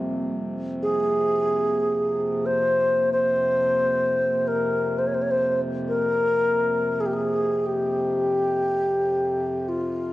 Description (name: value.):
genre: world meditative, free-time meditation music.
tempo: free time.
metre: none.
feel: none.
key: F minor.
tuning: A4 = 439 Hz.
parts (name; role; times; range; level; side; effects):
hand-pumped harmonium; drone; 0.0-10.1 s; F2 to C3; -31 LUFS; left 1 dB; none.
glass harmonica; texture; 0.0-7.7 s; G3 to C4; -33 LUFS; right 2 dB; none.
bright low xiao; melody; 0.8-10.1 s; F4 to Db5; -21 LUFS; equal; none.
room: moderate spring reverb, RT60 2.0 s, studio ambience.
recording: home recording on cassette.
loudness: -21 LUFS.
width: side -16 dB against mid.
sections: 0.0-10.1 A section.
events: none.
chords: none.